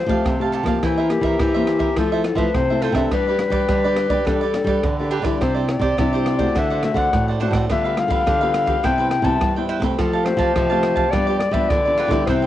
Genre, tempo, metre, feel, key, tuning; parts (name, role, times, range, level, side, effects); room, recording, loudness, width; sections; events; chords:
samba and choro; 105 BPM; 4/4; straight; C major; A4 = 439 Hz
clear clarinet; second line; 0.0-12.5 s; E4 to A5; -22 LUFS; left 5 dB; cassette tape
nylon-string guitar; accompaniment; 0.0-12.5 s; G2 to B4; -24 LUFS; left 4 dB; cassette tape
nylon-string guitar; bass; 0.0-12.5 s; A2 to G3; -23 LUFS; right 1 dB
cavaquinho; accompaniment; 0.1-12.5 s; D4 to A5; -25 LUFS; right 7 dB; cassette tape
open jazz drum kit; drums; 0.1-12.4 s; kick drum, ride cymbal, rim click; -25 LUFS; right 1 dB; cassette tape
light reverb, small room ambience; home recording on cassette, nothing above 10.5 kHz; -17 LUFS; side -12 dB against mid
0.0-12.5 A section
clarinet solo 0.0-12.5
0.0 Fadd9; 0.8 C7/E; 2.0 Fmaj7; 3.1 G; 5.4 Cadd9; 6.6 D7; 7.7 G7/D; 8.8 Cmaj7; 10.0 Fadd9; 11.1 G7